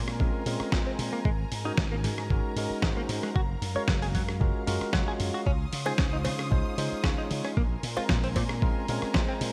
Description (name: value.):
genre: nu-disco, nu disco.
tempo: 114 BPM.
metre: 4/4.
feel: straight.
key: Db major.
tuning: A4 = 443 Hz.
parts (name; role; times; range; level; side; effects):
tine electric piano; accompaniment; 0.0-9.5 s; Ab3 to F5; -36 LUFS; equal; sidechain pumping, delay.
rich studio string section; sustained chords; 0.0-9.5 s; Db4 to Eb6; -42 LUFS; equal; sidechain pumping.
slap bass with an envelope filter; bass; 0.0-9.5 s; Gb1 to Db3; -35 LUFS; equal; sidechain pumping.
dusty soul sampler-style drum kit; drums; 0.1-9.5 s; hi-hat, rim click, snare drum; -36 LUFS; equal; none.
electronic kick drum; drums; 0.2-9.3 s; none; -31 LUFS; equal; none.
direct-recorded clean electric guitar; riff; 0.7-9.3 s; Ab2 to Db5; -38 LUFS; equal; analog chorus, low-pass filter, delay.
cowbell; percussion; 5.9-8.5 s; none; -40 LUFS; equal; none.
room: light reverb.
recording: bright 1980s-style digital production.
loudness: -28 LUFS.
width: mono.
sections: 0.0-9.5 A section.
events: none.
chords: 0.0 Bbm9; 1.3 Ab9sus4; 3.4 Gbmaj7; 5.5 Dbmaj9; 7.6 Bbm9.